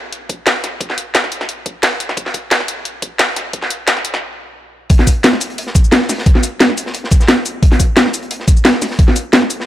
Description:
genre	drum and bass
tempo	176 BPM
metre	4/4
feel	straight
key	none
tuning	none
part	drum and bass drum kit	drums	0.1-9.6 s	cabasa, hi-hat, snare drum	-14 LUFS	equal	high-pass filter on snare, high-pass filter on hats, high-pass filter on perc, high-pass filter on room
part	electronic kick drum	drums	0.3-9.1 s	none	-11 LUFS	equal	high-pass filter on kick, high-pass filter on room
part	crunchy breakbeat drum kit	drums	4.9-9.7 s	hi-hat, snare drum	-24 LUFS	equal	high-pass filter on hats, high-pass filter on snare, high-pass filter on room
room	light reverb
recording	faint mains hum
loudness	-12 LUFS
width	side -13 dB against mid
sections	0.0-4.9 A section; 4.9-9.7 B section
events	build-up 0.0-4.9; stop 4.2-4.9; drop 4.9-9.7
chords	none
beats	0.13 0.47 | 0.81 1.15 1.49 1.83 | 2.17 2.51 2.85 3.19 | 3.54 3.88 4.22 4.56 | 4.90 5.24 5.58 5.92 | 6.26 6.60 6.94 7.29 | 7.63 7.97 8.31 8.65 | 8.99 9.33

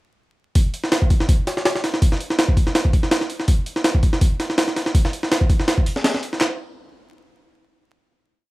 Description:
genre	drum and bass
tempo	164 BPM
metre	4/4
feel	swing 54% on 16ths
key	none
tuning	none
part	jungle sampler-style drum kit	drums	0.6-6.5 s	handclaps, hi-hat, kick drum, snare drum	-17 LUFS	equal	overdrive, small room ambience
room	digital ambience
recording	vinyl crackle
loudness	-17 LUFS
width	side -20 dB against mid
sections	0.6-6.4 drop; 6.4-7.9 final hit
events	drop 0.6-6.4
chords	none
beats	| 0.56 0.92 1.29 1.65 | 2.02 2.38 2.75 3.12 | 3.48 3.85 4.21 4.58 | 4.95 5.31 5.68 6.04 | 6.41

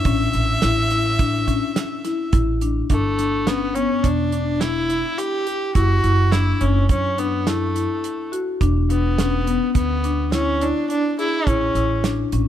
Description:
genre	progressive instrumental, band music in an uneven meter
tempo	105 BPM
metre	5/4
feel	straight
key	G lydian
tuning	A4 = 440 Hz
part	rich violin	melody	0.0-12.0 s	A3 to E5	-23 LUFS	right 1 dB	none
part	warm soul drum kit	drums	0.0-12.5 s	hi-hat, kick drum, snare drum	-23 LUFS	right 3 dB	none
part	marimba with medium mallets	arpeggios	0.1-12.5 s	B3 to G#4	-23 LUFS	left 6 dB	none
part	upright bass	bass	0.1-12.5 s	E1 to F#2	-21 LUFS	right 1 dB	none
room	light reverb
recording	close, detailed microphones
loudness	-18 LUFS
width	side -10 dB against mid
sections	0.0-2.9 A section; 2.9-12.5 B section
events	none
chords	0.1 A; 2.9 G69; 5.8 F#m7; 8.6 E7(no3); 11.5 A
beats	| 0.05 0.62 1.19 1.76 2.33 | 2.90 3.47 4.04 4.61 5.18 | 5.75 6.32 6.89 7.46 8.04 | 8.61 9.18 9.75 10.32 10.89 | 11.46 12.04

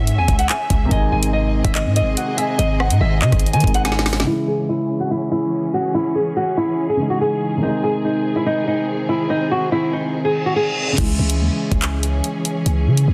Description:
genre	hip hop, drill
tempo	143 BPM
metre	4/4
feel	half-time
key	C# harmonic minor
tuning	A4 = 441 Hz
part	nylon-string guitar	melody	0.0-11.0 s	D#4 to G#5	-23 LUFS	equal	low-pass filter, delay
part	dark grand piano	accompaniment	0.0-13.1 s	B#2 to E4	-28 LUFS	equal	low-pass filter
part	dark symphonic string section	sustained chords	0.0-13.1 s	D#3 to E5	-29 LUFS	equal	low-pass filter
part	growling 808-style bass	bass	0.0-4.2, 11.0-13.1 s	G#1 to D#3	-20 LUFS	equal	none
part	drill drum kit	drums	0.1-4.3, 11.0-13.1 s	crash cymbal, handclaps, hi-hat, kick drum, rim click, snare drum	-22 LUFS	equal	overdrive
part	soft octave-layered synth lead	second line	0.9-2.6 s	F#5 to G#5	-29 LUFS	equal	chorus, tremolo, delay
part	reverse cymbal	sound effects	10.3-11.0 s	none	-27 LUFS	equal	none
room	light reverb, digital ambience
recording	dense, heavily limited modern master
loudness	-19 LUFS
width	mono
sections	0.0-4.3 A section; 4.3-11.0 B section; 11.0-13.1 C section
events	drum fill 3.8-4.3; filter sweep 4.3-11.0; reverse cymbal 10.3-11.0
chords	0.0 C#m; 0.9 G#; 4.3 C#m; 7.6 G#; 11.0 C#m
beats	0.07 0.49 | 0.91 1.33 1.75 2.17 | 2.59 3.01 3.43 3.85 | 4.27 4.69 5.11 5.53 | 5.95 6.37 6.79 7.21 | 7.62 8.04 8.46 8.88 | 9.30 9.72 10.14 10.56 | 10.98 11.40 11.82 12.24 | 12.66 13.08

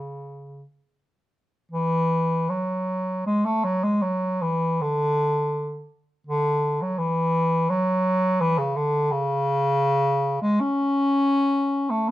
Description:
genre	classical, free, expressive piece for unaccompanied bass clarinet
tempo	50-88 BPM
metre	3/4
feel	rubato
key	unclear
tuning	A4 = 440 Hz
part	clear bass clarinet	solo	0.0-12.1 s	C#3 to C#4	-21 LUFS	equal	none
room	moderate large studio reverb, RT60 0.8 s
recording	dark, warm production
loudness	-21 LUFS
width	side -15 dB against mid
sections	0.0-1.7 A section; 1.7-12.1 B section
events	none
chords	none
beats	0.69 | 1.71 2.49 3.25 | 4.03 4.81 5.55 | 6.27 6.99 7.70 | 8.40 9.12 9.81 | 10.61 11.34 12.08

